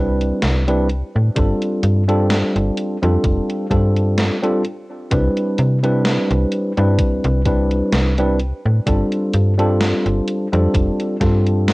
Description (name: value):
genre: vaporwave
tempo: 64 BPM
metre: 4/4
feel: swing 54% on 16ths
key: C major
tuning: A4 = 440 Hz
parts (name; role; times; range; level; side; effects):
- tine electric piano; accompaniment; 0.0-11.7 s; G3 to B4; -18 LUFS; equal; wide subtle chorus, cassette tape, analog delay, plate reverb
- slap-like FM bass; bass; 0.0-11.7 s; F1 to C3; -17 LUFS; equal; none
- gated 80s digital drum machine; drums; 0.2-11.7 s; hi-hat, snare drum; -22 LUFS; equal; gated reverb, gated reverb snare, vintage 12-bit sampler grit, studio ambience, cassette tape
- electronic kick drum; drums; 1.4-11.4 s; none; -20 LUFS; equal; vintage 12-bit sampler grit, studio ambience, cassette tape
room: light reverb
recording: home recording on cassette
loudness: -15 LUFS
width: side -22 dB against mid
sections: 0.0-11.7 A section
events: none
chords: 0.0 Cmaj9; 1.4 G9sus4; 5.1 Cmaj9; 8.9 G9sus4